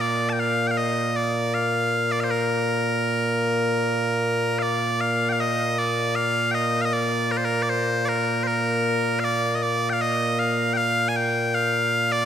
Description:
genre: scottish traditional, Scottish pipe music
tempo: 78 BPM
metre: 3/4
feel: straight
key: Bb major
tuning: A4 = 440 Hz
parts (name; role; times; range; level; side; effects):
- loud bright bagpipes; solo; 0.0-12.3 s; Bb2 to A5; -20 LUFS; equal; none
room: wet concert hall reverb, RT60 2.0 s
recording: none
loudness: -21 LUFS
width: side -9 dB against mid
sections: 0.0-4.6 A section; 4.6-12.3 A section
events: none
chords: none

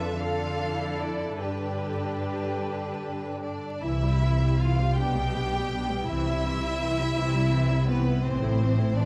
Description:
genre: classical, slow romantic movement for string orchestra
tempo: 48-58 BPM (dotted quarters)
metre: 6/8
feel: rubato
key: C major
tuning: A4 = 440 Hz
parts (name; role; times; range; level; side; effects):
- clear studio violin section; melody; 0.0-9.1 s; B4 to G5; -37 LUFS; equal; none
- rich studio violin section; second line; 0.0-9.1 s; B3 to A4; -34 LUFS; equal; none
- rich studio viola section; accompaniment; 0.0-9.1 s; D3 to G4; -36 LUFS; equal; none
- dark studio double bass section; bass; 0.0-9.1 s; A1 to G2; -32 LUFS; equal; none
- rich studio cello section; bass; 0.0-9.1 s; A2 to B4; -32 LUFS; equal; none
room: light reverb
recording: close, detailed microphones, vinyl crackle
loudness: -27 LUFS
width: mono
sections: 0.0-3.8 A section; 3.8-9.1 B section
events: none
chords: 0.0 Dm/F; 1.4 G; 3.8 C; 5.0 G/B; 6.1 C; 8.2 Am

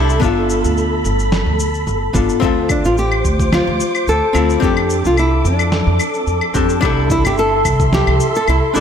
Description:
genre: sunset chillout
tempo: 109 BPM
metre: 4/4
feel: swing 53% on 16ths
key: D dorian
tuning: A4 = 440 Hz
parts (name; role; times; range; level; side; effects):
- archtop guitar, miked and amplified; accompaniment; 0.0-8.8 s; B3 to E5; -20 LUFS; moving between left 7 dB and right 4 dB; auto-pan, digital delay
- soft string machine; sustained chords; 0.0-8.8 s; A4 to D6; -21 LUFS; equal; ensemble chorus
- upright bass; bass; 0.0-8.8 s; G1 to F2; -18 LUFS; equal; none
- electronic shaker, snare drum and claves; drums; 0.1-8.8 s; none; -22 LUFS; left 2 dB; none
- electronic kick drum; drums; 0.2-7.9 s; none; -19 LUFS; equal; none
- nylon-string guitar; melody; 2.7-8.8 s; D4 to A4; -18 LUFS; equal; ping-pong delay
room: light reverb, digital ambience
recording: none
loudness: -13 LUFS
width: side -8 dB against mid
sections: 0.0-8.8 A section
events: none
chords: 0.2 G9; 2.4 Dm7; 4.6 F6; 6.8 C6

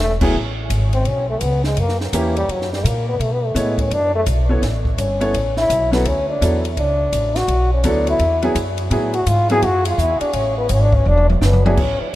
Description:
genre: jazz, small-group swing and bop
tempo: 168 BPM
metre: 4/4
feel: swing 64% on 8ths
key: A major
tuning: A4 = 439 Hz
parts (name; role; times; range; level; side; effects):
- trombone with cup mute; melody; 0.0-12.2 s; C#3 to G#4; -20 LUFS; left 1 dB; none
- upright bass; bass; 0.0-12.0 s; E1 to B2; -19 LUFS; equal; none
- clear upright piano; accompaniment; 0.2-11.8 s; A2 to C#5; -24 LUFS; equal; none
- compact cocktail drum kit; drums; 0.2-11.9 s; crash cymbal, hi-hat, kick drum, ride cymbal, snare drum, toms; -26 LUFS; equal; none
room: moderate huge ambient reverb, RT60 8.8 s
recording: in a vast, echoing space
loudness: -15 LUFS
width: side -15 dB against mid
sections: 0.3-11.8 A section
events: trombone solo 0.3-12.2; drum fill 11.1-11.8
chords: 0.3 Amaj9; 1.8 F#7b9; 3.2 B9sus4; 4.6 A9; 6.1 Dmaj9; 7.5 Bm7; 8.2 Eadd9; 8.9 Asus2; 11.1 Eadd9

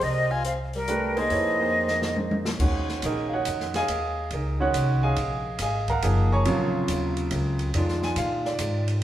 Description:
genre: modal jazz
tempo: 140 BPM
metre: 3/4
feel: swing 67% on 8ths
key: Eb dorian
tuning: A4 = 440 Hz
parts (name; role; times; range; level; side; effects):
- reedy concert flute; melody; 0.0-2.5 s; Bb4 to Ab5; -25 LUFS; equal; none
- clear tenor saxophone; second line; 0.0-2.5 s; G3 to F4; -34 LUFS; left 2 dB; none
- clear baby grand piano; accompaniment; 0.0-8.9 s; C3 to Db6; -26 LUFS; right 2 dB; none
- upright bass; bass; 0.0-9.0 s; Gb1 to Bb2; -27 LUFS; equal; none
- open jazz drum kit; drums; 0.0-8.9 s; crash cymbal, hi-hat, kick drum, ride cymbal, snare drum, toms; -33 LUFS; equal; none
room: wet large studio reverb, RT60 1.4 s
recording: band playing live in one room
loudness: -23 LUFS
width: side -12 dB against mid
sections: 0.0-2.6 A section; 2.6-9.0 B section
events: drum fill 1.7-2.6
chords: 0.0 Fm11; 2.6 Ebm11; 7.7 Fm11

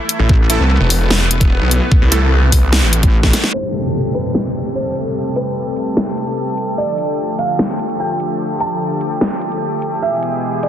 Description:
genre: heavy wobble dubstep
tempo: 148 BPM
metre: 4/4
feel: half-time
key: A minor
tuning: A4 = 445 Hz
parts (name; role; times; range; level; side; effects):
- lush unison pad; sustained chords; 0.0-10.7 s; B2 to A4; -21 LUFS; left 1 dB; chorus, sidechain pumping
- dubstep drum kit; drums; 0.1-10.7 s; hi-hat, snare drum; -18 LUFS; equal; low-pass filter on hats, low-pass filter on snare, low-pass filter on room
- snarling distorted saw bass; bass; 0.2-3.0 s; E1 to C2; -14 LUFS; equal; distortion, overdrive
- wobble bass; bass; 0.3-3.3 s; A1 to C2; -14 LUFS; equal; chorus, overdrive
- electronic kick drum; drums; 0.3-3.3 s; none; -12 LUFS; equal; none
- supersaw stab; stabs; 0.5-2.2 s; A3 to A4; -23 LUFS; right 2 dB; dub echo
- felt-muted upright piano; melody; 3.5-10.7 s; B4 to A5; -22 LUFS; right 2 dB; dub echo
- downlifter; sound effects; 3.5-6.8 s; none; -23 LUFS; equal; none
room: moderate lush hall reverb, RT60 1.9 s, digital ambience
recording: dense, heavily limited modern master, low-pass filter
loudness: -14 LUFS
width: side -10 dB against mid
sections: 0.0-3.5 A section; 3.5-10.7 B section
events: drop 0.0-3.5; drum fill 3.2-3.5; filter sweep 3.5-10.7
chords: 0.0 A5; 3.5 Am7; 6.8 Dm; 10.0 E

